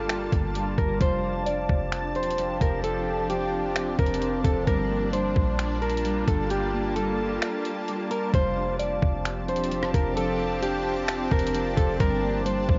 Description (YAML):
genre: hip hop, atmospheric cloud-rap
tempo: 131 BPM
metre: 4/4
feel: half-time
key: F major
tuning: A4 = 440 Hz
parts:
  - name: mellow electric guitar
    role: melody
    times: 0.0-12.8 s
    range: G4 to D5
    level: -31 LUFS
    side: equal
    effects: cassette tape, analog delay
  - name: shimmering ambient pad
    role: sustained chords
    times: 0.0-12.8 s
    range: F3 to A5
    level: -32 LUFS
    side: equal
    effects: chorus, built-in reverb, sidechain pumping, cassette tape
  - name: Celtic harp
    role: arpeggios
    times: 0.0-12.8 s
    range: F3 to D4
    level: -35 LUFS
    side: equal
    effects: cassette tape, analog delay
  - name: warm 808-style bass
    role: bass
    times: 0.0-12.8 s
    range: E1 to Bb1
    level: -33 LUFS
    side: equal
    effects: none
  - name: trip hop sampler-style drum kit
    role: drums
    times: 0.1-12.8 s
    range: finger snaps, hi-hat, kick drum, rim click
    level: -29 LUFS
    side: equal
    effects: cassette tape
room: little or no reverb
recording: home recording on cassette, nothing above 7.7 kHz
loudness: -26 LUFS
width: mono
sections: 0.0-8.3 A section; 8.3-12.8 B section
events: break 7.4-8.3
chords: 0.0 Gm9; 1.0 F69; 4.7 Gm9; 8.3 F69; 12.0 Gm9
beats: 0.09 0.55 | 1.01 1.47 1.93 2.38 | 2.84 3.30 3.76 4.21 | 4.67 5.13 5.59 6.05 | 6.50 6.96 7.42 7.88 | 8.34 8.79 9.25 9.71 | 10.17 10.63 11.09 11.54 | 12.00 12.46